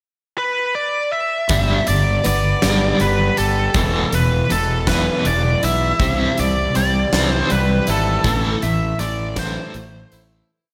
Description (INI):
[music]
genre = quiet-loud alternative rock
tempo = 53 BPM (dotted quarters)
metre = 6/8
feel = straight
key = G major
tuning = A4 = 440 Hz
[part]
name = high-gain lead guitar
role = melody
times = 0.4-10.2 s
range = A4 to E5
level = -23 LUFS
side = equal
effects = distortion
[part]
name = picked plugged-in swing-style acoustic guitar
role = arpeggios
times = 1.5-10.5 s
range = E2 to G4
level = -28 LUFS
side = equal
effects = slapback echo, tape echo
[part]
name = overdriven electric guitar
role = riff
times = 1.5-10.1 s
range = E2 to C4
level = -24 LUFS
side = equal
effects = tremolo, slapback echo
[part]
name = fuzz fingered electric bass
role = bass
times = 1.5-10.4 s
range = E1 to C2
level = -24 LUFS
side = equal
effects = overdrive
[part]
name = huge arena drum kit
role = drums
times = 1.5-10.3 s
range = hi-hat, kick drum, snare drum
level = -26 LUFS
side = equal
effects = none
[sound]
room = moderate concert hall reverb, RT60 2.2 s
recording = big arena sound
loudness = -18 LUFS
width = mono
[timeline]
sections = 0.0-1.5 pickup bar; 1.5-10.5 verse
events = fade-out 8.3-10.5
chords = 0.0 N.C.; 1.5 G; 3.8 E; 6.0 C; 8.3 Am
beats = 0.38 | 1.50 2.63 | 3.75 4.88 | 6.00 7.13 | 8.25 9.38